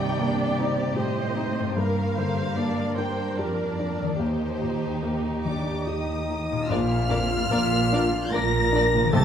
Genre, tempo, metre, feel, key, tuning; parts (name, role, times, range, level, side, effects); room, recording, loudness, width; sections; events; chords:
cinematic, emotional film score for orchestra; 73 BPM; 3/4; uneven beats, rubato; Bb major; A4 = 441 Hz
rich studio violin section; melody; 0.0-9.2 s; C5 to Bb6; -32 LUFS; left 2 dB
rich studio violin section; second line; 0.0-9.2 s; Bb3 to D5; -33 LUFS; left 1 dB
dark studio viola section; accompaniment; 0.0-9.2 s; Bb3 to D5; -33 LUFS; right 1 dB
felt-muted upright piano; accompaniment; 0.0-9.2 s; Bb1 to Bb4; -28 LUFS; equal
concert harp; arpeggios; 0.0-9.2 s; G2 to Bb4; -34 LUFS; left 6 dB
warm studio cello section; bass; 0.0-9.2 s; Eb2 to C3; -30 LUFS; right 2 dB
concert flute; second line; 5.5-9.2 s; D5 to Bb5; -31 LUFS; equal
warm clarinet; second line; 5.5-9.2 s; D4 to Bb4; -32 LUFS; right 1 dB
mellow French horn section; sustained chords; 5.5-9.2 s; Eb4 to D5; -30 LUFS; left 2 dB
rich studio double bass section; bass; 6.7-9.2 s; Bb1 to C2; -28 LUFS; right 3 dB
moderate scoring stage reverb, RT60 1.8 s; -22 LUFS; side -8 dB against mid
0.0-6.7 A section; 6.7-9.2 A section
0.0 Cm7; 1.8 Gm7; 4.2 Eb6; 6.7 Bb